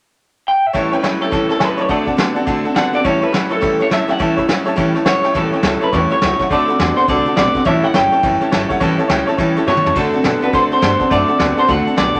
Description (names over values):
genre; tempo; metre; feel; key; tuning
rockabilly; 208 BPM; 4/4; swing 62% on 8ths; A mixolydian; A4 = 441 Hz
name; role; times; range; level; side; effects
electric guitar through a small old amp; melody; 0.5-12.2 s; A4 to G5; -19 LUFS; equal; none
picked steel-string acoustic guitar; accompaniment; 0.7-12.2 s; A2 to A4; -23 LUFS; equal; none
tack piano; accompaniment; 0.7-12.2 s; C#5 to C6; -24 LUFS; equal; none
electric guitar through a small old amp; riff; 0.7-12.2 s; A2 to B3; -23 LUFS; equal; none
vintage brush drum kit; drums; 0.7-12.2 s; crash cymbal, hi-hat, kick drum, snare drum, toms; -23 LUFS; equal; none
upright bass; bass; 5.3-12.2 s; F#1 to D3; -27 LUFS; equal; none
room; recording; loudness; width
moderate studio reverb, RT60 0.8 s; none; -15 LUFS; mono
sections
0.7-5.4 A section; 5.4-12.2 B section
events
drum fill 9.7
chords
0.0 N.C.; 0.7 A7; 1.9 D7; 3.1 A7; 6.5 D7; 7.7 A7; 10.0 D7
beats
0.17 0.46 | 0.75 1.03 1.32 1.61 | 1.90 2.19 2.48 2.76 | 3.05 3.34 3.63 3.92 | 4.20 4.49 4.78 5.07 | 5.36 5.64 5.93 6.22 | 6.51 6.79 7.08 7.37 | 7.66 7.95 8.23 8.52 | 8.81 9.10 9.38 9.67 | 9.96 10.25 10.54 10.83 | 11.11 11.40 11.69 11.98